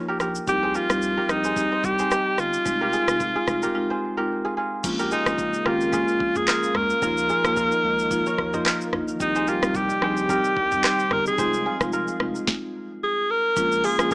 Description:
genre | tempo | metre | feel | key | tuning
afrobeats | 110 BPM | 4/4 | swing 55% on 16ths | Bb dorian | A4 = 439 Hz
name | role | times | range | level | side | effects
kora | riff | 0.0-14.1 s | Eb4 to F5 | -29 LUFS | right 1 dB | tape echo
round analog bass | bass | 0.2-14.1 s | F1 to Eb2 | -35 LUFS | equal | none
afro-pop drum kit | drums | 0.2-14.1 s | crash cymbal, handclaps, hi-hat, kick drum, rim click, shaker, snare drum, toms | -26 LUFS | equal | none
bright alto saxophone | melody | 0.5-14.1 s | Eb4 to Bb4 | -22 LUFS | equal | none
marimba with medium mallets | accompaniment | 0.5-14.1 s | F3 to G4 | -27 LUFS | equal | none
lush unison pad | sustained chords | 4.8-14.1 s | Bb2 to G4 | -35 LUFS | equal | chorus
room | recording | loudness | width
light reverb | small speaker sound | -20 LUFS | side -27 dB against mid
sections
0.0-4.8 A section; 4.8-13.6 B section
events
break 3.7-4.8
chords
0.5 Cm; 2.7 Fm7; 4.8 Bbm7; 7.0 Ebsus2; 9.2 Cm; 11.4 Fm7; 13.6 Bbm7

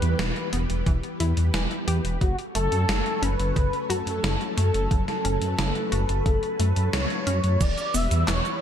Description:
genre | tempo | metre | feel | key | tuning
synthwave | 89 BPM | 4/4 | straight | unclear | A4 = 440 Hz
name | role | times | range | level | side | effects
expressive synth lead | melody | 0.0-8.6 s | F#4 to E5 | -29 LUFS | left 1 dB | ensemble chorus, ping-pong delay
analog string pad | sustained chords | 0.0-8.6 s | E3 to C#5 | -32 LUFS | left 1 dB | ensemble chorus, sidechain pumping
analog pluck | arpeggios | 0.0-8.5 s | C#3 to G4 | -34 LUFS | equal | chorus, ping-pong delay
dark detuned saw bass | bass | 0.0-8.4 s | E1 to F#2 | -24 LUFS | equal | none
gated 80s digital drum machine | drums | 0.0-8.6 s | cabasa, crash cymbal, handclaps, hi-hat, snare drum | -30 LUFS | equal | gated reverb, gated reverb snare
electronic kick drum | drums | 0.9-7.7 s | none | -23 LUFS | equal | none
room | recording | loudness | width
digital ambience | none | -22 LUFS | side -9 dB against mid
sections
0.0-7.6 A section; 7.6-8.6 B section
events
kick drops out 6.9-7.6; band accent 6.9-7.3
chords
0.0 Em; 2.2 F#m; 7.6 Em

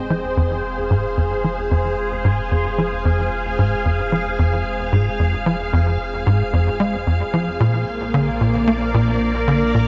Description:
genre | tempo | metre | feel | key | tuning
ambient, sequencer-driven space music | 112 BPM | 4/4 | straight | F dorian | A4 = 437 Hz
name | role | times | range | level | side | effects
string machine, full ensemble | sustained chords | 0.0-9.9 s | Bb3 to G5 | -24 LUFS | equal | ensemble chorus
warm sub bass | bass | 0.0-9.9 s | F1 to Bb1 | -32 LUFS | equal | none
tight sequencer bass | riff | 0.1-9.9 s | F2 to Bb3 | -21 LUFS | equal | ensemble chorus, tape echo
room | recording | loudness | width
moderate plate reverb, RT60 3.6 s | nothing above 7.9 kHz | -19 LUFS | mono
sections
0.0-9.9 A section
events
filter sweep on analog synth bass 0.0-9.9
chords
0.0 Fm; 7.6 Bb

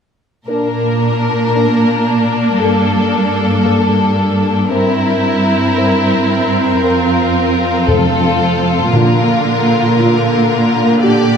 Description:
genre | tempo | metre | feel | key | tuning
cinematic, heroic adventure film score | 114 BPM | 4/4 | straight | Bb major | A4 = 440 Hz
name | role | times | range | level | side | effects
warm symphonic violin section | melody | 0.5-11.4 s | A4 to D5 | -18 LUFS | left 5 dB | none
warm symphonic violin section | second line | 0.5-11.4 s | D4 to G4 | -19 LUFS | left 1 dB | none
clear symphonic viola section | accompaniment | 0.5-11.4 s | D3 to C4 | -18 LUFS | right 2 dB | none
dark French horn section | sustained chords | 0.5-11.2 s | Bb3 to Bb4 | -20 LUFS | left 2 dB | none
dark symphonic cello section | bass | 0.5-11.4 s | F2 to Bb2 | -15 LUFS | right 2 dB | none
timpani | percussion | 7.9-9.7 s | F2 to Bb2 | -18 LUFS | equal | none
room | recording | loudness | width
moderate scoring stage reverb, RT60 1.6 s | none | -11 LUFS | side -7 dB against mid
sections
0.5-11.4 A section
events
build-up 0.5-11.4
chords
0.5 Bb; 2.6 Gmadd9; 4.7 C7/G; 6.8 Fsus4; 7.9 F; 8.9 Bb

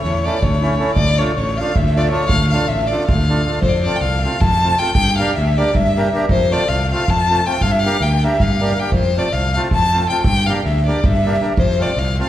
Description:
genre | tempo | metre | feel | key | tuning
balkan folk, Balkan wedding band | 317 BPM (eighths) | 7/8 | straight | D harmonic minor | A4 = 444 Hz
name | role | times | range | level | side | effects
warm violin | melody | 0.0-12.3 s | C5 to A5 | -19 LUFS | left 2 dB | none
fuzz fingered electric bass | bass | 0.0-12.2 s | A1 to G2 | -19 LUFS | equal | overdrive
soft-mallet drum kit | percussion | 0.0-12.2 s | kick drum, snare drum | -21 LUFS | right 1 dB | none
accordion | accompaniment | 0.3-12.3 s | A3 to Bb4 | -23 LUFS | right 2 dB | none
room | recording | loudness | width
wet recital hall reverb, RT60 1.6 s | heard from further back in the room | -14 LUFS | side -12 dB against mid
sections
0.0-3.6 A section; 3.6-12.3 B section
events
none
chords
0.0 A; 1.0 Dm; 3.6 F; 5.0 Gm; 6.3 F; 7.6 Gm; 8.9 F; 10.3 Gm; 11.6 F

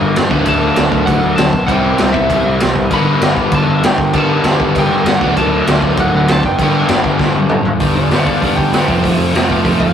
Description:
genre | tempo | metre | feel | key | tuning
punk rock | 196 BPM | 4/4 | straight | G major | A4 = 440 Hz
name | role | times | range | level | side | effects
lightly driven lead guitar | melody | 0.0-9.9 s | F4 to B5 | -20 LUFS | equal | none
overdriven semi-hollow guitar | riff | 0.0-9.9 s | F2 to E4 | -15 LUFS | left 1 dB | none
picked electric bass | bass | 0.0-9.9 s | F1 to D2 | -20 LUFS | equal | none
raw garage drum kit | drums | 0.2-9.9 s | crash cymbal, hi-hat, kick drum, snare drum, toms | -15 LUFS | right 1 dB | none
room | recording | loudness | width
light reverb | rough rehearsal-room recording | -11 LUFS | side -8 dB against mid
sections
0.0-7.8 A section; 7.8-9.9 B section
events
drum fill 7.2-7.8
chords
0.3 D; 1.7 C; 2.9 G; 5.2 D; 6.6 G; 8.9 F

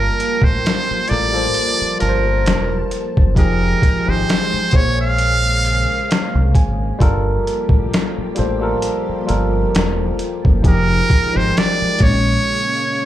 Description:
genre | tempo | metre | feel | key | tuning
R&B, neo-soul | 66 BPM | 4/4 | swing 55% on 16ths | unclear | A4 = 440 Hz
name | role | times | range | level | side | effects
trumpet with metal mute | melody | 0.0-13.1 s | Bb4 to F5 | -18 LUFS | right 2 dB | slapback echo, plate reverb
tine electric piano | accompaniment | 0.0-13.1 s | Bb2 to A5 | -22 LUFS | left 1 dB | overdrive, wide subtle chorus, plate reverb
soft string machine | sustained chords | 0.0-13.1 s | Db3 to A5 | -27 LUFS | equal | phaser, ensemble chorus
deep dub fingered electric bass | bass | 0.0-12.4 s | E1 to C2 | -19 LUFS | equal | none
boom bap sampler-style drum kit | drums | 0.2-12.2 s | hi-hat, kick drum, snare drum | -17 LUFS | equal | none
room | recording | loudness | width
light reverb | live gig heard through the venue's PA, club reverb | -14 LUFS | side -12 dB against mid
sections
0.0-13.1 A section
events
tine electric piano fill 5.6-7.0; break 12.5-13.1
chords
0.0 Gm9; 3.4 Fm9; 4.7 Bbm9; 7.0 Gm9; 10.6 Fm9; 12.0 Bbm7

